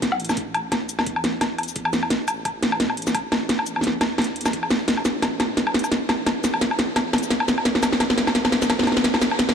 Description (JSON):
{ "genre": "half-time drum and bass", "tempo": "173 BPM", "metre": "4/4", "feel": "swing 56% on 16ths, half-time", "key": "unclear", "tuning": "A4 = 444 Hz", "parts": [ { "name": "dark detuned saw bass", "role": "bass", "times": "0.0-9.5 s", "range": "A1 to E2", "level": "-36 LUFS", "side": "equal", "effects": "none" }, { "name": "drum and bass drum kit", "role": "drums", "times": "0.0-9.5 s", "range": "hi-hat, shaker, snare drum, woodblock", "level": "-20 LUFS", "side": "equal", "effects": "none" }, { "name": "electronic kick drum", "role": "drums", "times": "0.0-9.5 s", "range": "none", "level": "-38 LUFS", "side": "right 1 dB", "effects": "none" } ], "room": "moderate huge ambient reverb, RT60 6.7 s", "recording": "dark, warm production", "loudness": "-20 LUFS", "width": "side -7 dB against mid", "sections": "0.0-9.5 A section", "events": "build-up 0.0-9.5; drum fill 0.0-9.5", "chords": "none" }